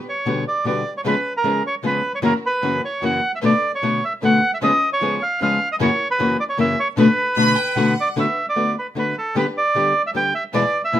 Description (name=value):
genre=tango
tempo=152 BPM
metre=3/4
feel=rubato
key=B minor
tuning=A4 = 444 Hz
part: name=muted studio string section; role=stabs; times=0.0-11.0 s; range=B3 to B4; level=-29 LUFS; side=equal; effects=none
part: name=bandoneon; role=melody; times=0.1-11.0 s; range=A4 to G5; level=-20 LUFS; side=right 2 dB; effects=none
part: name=nylon-string guitar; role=accompaniment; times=0.3-11.0 s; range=E2 to G#4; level=-19 LUFS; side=left 3 dB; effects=none
part: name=warm studio violin section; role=second line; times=7.4-8.2 s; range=F#5 to B5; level=-24 LUFS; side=right 3 dB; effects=none
room=light reverb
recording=minimal, uncompressed stereo recording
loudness=-17 LUFS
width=side -11 dB against mid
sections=0.0-8.2 A section; 8.2-11.0 B section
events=none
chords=0.0 Gmaj7/B; 1.0 C#7; 2.2 F#7; 3.4 Bm7; 4.6 C#7; 5.8 F#7; 7.0 Bm7; 8.2 D6; 9.4 G/D